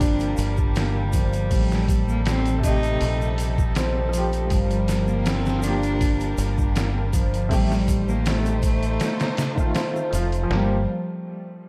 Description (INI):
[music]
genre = trip hop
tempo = 80 BPM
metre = 4/4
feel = swing 53% on 16ths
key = G minor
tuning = A4 = 440 Hz
[part]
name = rich cello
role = melody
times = 0.0-10.9 s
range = G3 to Eb4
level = -31 LUFS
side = equal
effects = dub echo
[part]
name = felt-muted upright piano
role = accompaniment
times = 0.0-10.9 s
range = C3 to G4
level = -32 LUFS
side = equal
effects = tremolo, vintage 12-bit sampler grit
[part]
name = dark chamber violin section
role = sustained chords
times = 0.0-10.9 s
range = G3 to C5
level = -35 LUFS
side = equal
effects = none
[part]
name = concert harp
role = arpeggios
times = 0.0-10.8 s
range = F3 to C4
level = -33 LUFS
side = equal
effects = tape echo
[part]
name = deep dub fingered electric bass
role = bass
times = 0.0-10.9 s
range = F1 to Bb1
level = -26 LUFS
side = equal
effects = none
[part]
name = trip hop sampler-style drum kit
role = drums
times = 0.0-10.7 s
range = hi-hat, kick drum, snare drum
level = -27 LUFS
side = equal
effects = studio reverb
[part]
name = egg shaker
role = percussion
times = 0.0-10.5 s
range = none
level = -44 LUFS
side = equal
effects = none
[sound]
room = small room ambience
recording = dark, warm production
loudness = -22 LUFS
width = mono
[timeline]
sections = 0.0-10.5 A section; 10.5-11.7 B section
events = none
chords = 0.0 Gm7; 1.5 Am7b5; 4.5 Gm7; 7.5 Am7b5; 9.0 F7; 10.5 Gm7